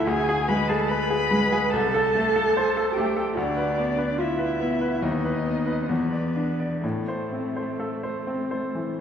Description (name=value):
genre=classical, slow romantic movement for piano trio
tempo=62-74 BPM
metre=4/4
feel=rubato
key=A minor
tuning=A4 = 440 Hz
part: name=muted violin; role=melody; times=0.0-9.0 s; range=A4 to B5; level=-32 LUFS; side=left 4 dB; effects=none
part: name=muted cello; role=second line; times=0.0-9.0 s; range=A3 to B4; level=-27 LUFS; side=right 3 dB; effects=none
part: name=bright grand piano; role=accompaniment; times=0.0-9.0 s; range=C2 to D5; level=-24 LUFS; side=left 1 dB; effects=none
room=wet scoring stage reverb, RT60 1.9 s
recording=heard from further back in the room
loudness=-22 LUFS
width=side -8 dB against mid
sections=0.0-9.0 A section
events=none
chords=0.1 G#dim/D; 1.7 Am/C; 3.4 Bdim/D; 5.0 B/D#; 5.9 E5; 6.8 Am